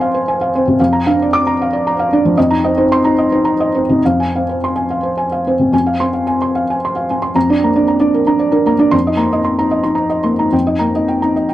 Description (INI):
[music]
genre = neoclassical minimalist piano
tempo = 102-116 BPM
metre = 3/4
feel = rubato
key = F dorian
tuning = A4 = 440 Hz
[part]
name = felt-muted upright piano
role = solo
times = 0.0-11.5 s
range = F2 to D6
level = -12 LUFS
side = equal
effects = none
[sound]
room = small room ambience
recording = dry, close 1970s-style studio recording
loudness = -12 LUFS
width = side -14 dB against mid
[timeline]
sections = 0.0-5.7 A section; 5.7-11.5 A section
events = none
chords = 0.0 Fm; 0.8 Bb/F; 2.4 Cm7/F; 4.0 Fm; 7.4 Bb/F; 8.9 Cm7/F; 10.5 Eb/F